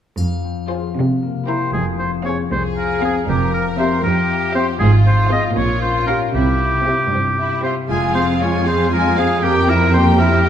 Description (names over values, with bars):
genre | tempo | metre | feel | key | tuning
cinematic, playful, whimsical film cue | 78 BPM (dotted quarters) | 6/8 | straight | F minor | A4 = 440 Hz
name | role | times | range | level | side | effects
concert harp | arpeggios | 0.2-10.5 s | F2 to F5 | -22 LUFS | left 6 dB | none
clear studio cello section | bass | 0.2-10.5 s | C2 to C3 | -20 LUFS | right 2 dB | none
triangle | percussion | 0.2-1.2 s | none | -40 LUFS | left 2 dB | none
rich studio violin section | melody | 0.7-10.5 s | Bb4 to Ab5 | -25 LUFS | left 4 dB | none
rich studio violin section | second line | 0.7-10.5 s | C4 to Bb4 | -25 LUFS | left 2 dB | none
rich studio viola section | accompaniment | 0.7-10.5 s | Ab3 to Ab4 | -22 LUFS | right 1 dB | none
clear oboe | second line | 1.5-10.5 s | G4 to Eb5 | -20 LUFS | right 1 dB | none
rich studio double bass section | bass | 1.7-8.4 s | F1 to C2 | -20 LUFS | right 2 dB | none
room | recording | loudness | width
wet scoring stage reverb, RT60 1.6 s | dark, warm production | -15 LUFS | side -9 dB against mid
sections
0.2-1.7 A section; 1.7-10.5 B section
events
none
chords
0.2 Fm; 1.0 C7; 1.7 Fm; 3.3 C7/F; 4.8 Fm/Ab; 5.6 Gm7b5/Bb; 6.3 C; 7.9 Fm; 9.4 C7/F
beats
| 0.17 0.95 | 1.74 2.52 | 3.28 4.05 | 4.81 5.57 | 6.34 7.12 | 7.90 8.67 | 9.44 10.19